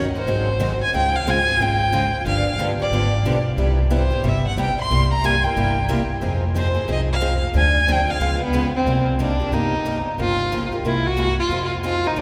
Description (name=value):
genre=acoustic string swing (jazz manouche)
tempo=182 BPM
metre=4/4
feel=swing 61% on 8ths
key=C minor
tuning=A4 = 441 Hz
part: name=warm violin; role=melody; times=0.0-12.2 s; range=Cb4 to C6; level=-24 LUFS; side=equal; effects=none
part: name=picked steel-string acoustic guitar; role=accompaniment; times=0.0-12.2 s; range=C3 to Bb4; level=-29 LUFS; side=equal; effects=none
part: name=picked steel-string acoustic guitar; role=accompaniment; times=0.0-8.7 s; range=C3 to Ab4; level=-31 LUFS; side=equal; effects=none
part: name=upright bass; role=bass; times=0.0-12.2 s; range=G1 to F2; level=-24 LUFS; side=equal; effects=none
room=wet cathedral reverb, RT60 6.9 s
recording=recorded in a church or concert hall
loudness=-20 LUFS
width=mono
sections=0.0-8.9 A section; 8.9-12.2 B section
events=none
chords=0.3 Ab7; 0.9 Dbmaj7; 2.3 G7; 3.6 Cmaj7; 4.9 C7; 6.2 Fm7; 7.5 Dm7b5; 8.2 Db7; 8.9 Cm9; 10.2 Gm7b5; 10.8 Caug7; 11.5 Fm7